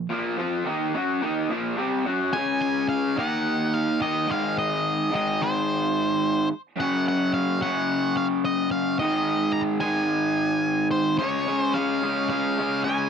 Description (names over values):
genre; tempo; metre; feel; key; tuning
rock; 108 BPM; 4/4; straight; unclear; A4 = 439 Hz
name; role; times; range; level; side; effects
raw garage guitar; riff; 0.0-13.1 s; Gb2 to Gb4; -23 LUFS; equal; overdrive
octave-fuzz lead guitar; melody; 2.3-13.1 s; C5 to Bb5; -27 LUFS; equal; distortion, slapback echo
room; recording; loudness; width
light reverb; dry, close 1970s-style studio recording; -22 LUFS; side -7 dB against mid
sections
0.0-2.3 A section; 2.3-11.2 B section; 11.2-13.1 C section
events
none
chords
0.0 Bbm; 2.3 Db5; 3.2 Ebm; 4.3 Ab; 6.8 Gb5; 9.0 Ab5; 11.2 Db